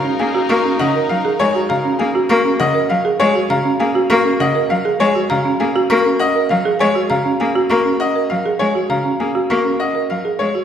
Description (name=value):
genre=classical, minimalist pattern music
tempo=100 BPM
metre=3/4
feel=straight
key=F# major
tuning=A4 = 440 Hz
part: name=bright grand piano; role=melody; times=0.0-10.6 s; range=G#4 to E#5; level=-19 LUFS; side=left 3 dB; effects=none
part: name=rich studio violin section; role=sustained chords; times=0.0-2.1 s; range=D#4 to A#4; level=-25 LUFS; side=left 3 dB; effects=none
part: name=folk marimba with medium mallets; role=arpeggios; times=0.0-10.6 s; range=C#4 to A#4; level=-19 LUFS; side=right 3 dB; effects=none
part: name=xylophone with rubber mallets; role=arpeggios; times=0.0-10.3 s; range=E#5 to C#6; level=-23 LUFS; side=left 1 dB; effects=none
part: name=clear cello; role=accompaniment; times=0.2-10.5 s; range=C#3 to A#3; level=-21 LUFS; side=equal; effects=none
room=wet scoring stage reverb, RT60 1.8 s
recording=heard from further back in the room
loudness=-14 LUFS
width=side -8 dB against mid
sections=0.0-10.6 A section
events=none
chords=0.0 F#69